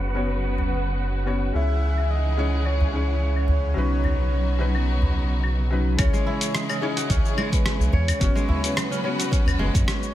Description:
organic downtempo; 108 BPM; 4/4; swing 54% on 16ths; C# minor; A4 = 444 Hz
felt-muted upright piano; accompaniment; 0.0-10.1 s; F#3 to C#5; -30 LUFS; left 3 dB; sidechain pumping, low-pass filter, ping-pong delay
warm studio string section; sustained chords; 0.0-10.1 s; C#3 to B4; -31 LUFS; right 1 dB; sidechain pumping, low-pass filter
round analog bass; bass; 0.0-9.8 s; F#1 to F#2; -23 LUFS; equal; tube saturation
dusty soul sampler-style drum kit; drums; 0.0-10.1 s; claves, hi-hat, rim click, shaker; -29 LUFS; left 1 dB; overdrive, low-pass filter on hats, low-pass filter on perc, low-pass filter on snare, low-pass filter on room
wind-like tuned noise texture; texture; 0.0-6.0 s; F#5; -38 LUFS; right 5 dB; built-in reverb
udu; percussion; 0.6-9.6 s; -25 LUFS; equal
breathy flute-like synth lead; melody; 1.5-10.1 s; B4 to E5; -32 LUFS; equal; analog chorus, ping-pong delay
kora; arpeggios; 6.0-10.1 s; G#3 to C#5; -29 LUFS; right 1 dB; ping-pong delay
electronic kick drum; drums; 6.0-9.9 s; -22 LUFS; equal
studio ambience; -20 LUFS; side -13 dB against mid
0.0-6.0 A section; 6.0-10.1 B section
filter sweep on string section 0.0-6.0
0.0 F#sus4; 1.5 C#m; 3.8 Badd9; 6.0 C#m; 8.2 F#sus4
0.43 0.99 | 1.54 2.10 2.65 3.21 | 3.77 4.32 4.88 5.43 | 5.99 6.54 7.10 7.66 | 8.21 8.77 9.32 9.88

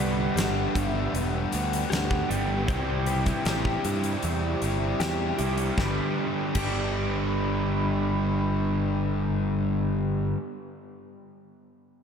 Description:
rock, shoegaze and dream pop; 78 BPM; 4/4; straight; G major; A4 = 442 Hz
warm velvety synth lead; melody; 0.0-9.6 s; E5 to B5; -36 LUFS; left 1 dB; chorus, phaser, tape echo
direct-recorded clean electric guitar; arpeggios; 0.0-7.3 s; G4 to C5; -37 LUFS; left 4 dB; analog chorus, tape echo
overdriven electric guitar; riff; 0.0-10.4 s; G2 to G4; -31 LUFS; left 6 dB; wide subtle chorus
raw garage guitar; riff; 0.0-10.4 s; G2 to G4; -30 LUFS; right 6 dB; overdrive, reverse reverb
modern bright picked electric bass; bass; 0.0-10.3 s; E1 to G2; -29 LUFS; equal
huge arena drum kit; drums; 0.4-6.8 s; crash cymbal, hi-hat, kick drum, snare drum; -32 LUFS; equal
wet church reverb, RT60 3.5 s; dreamy mix soaked in reverb; -24 LUFS; side -7 dB against mid
0.0-5.8 A section; 5.8-8.9 B section
0.0 Gmaj7; 2.7 Cmaj7; 5.8 G
0.36 1.13 1.91 | 2.68 3.45 4.23 5.00 | 5.78 6.55 7.32 8.09

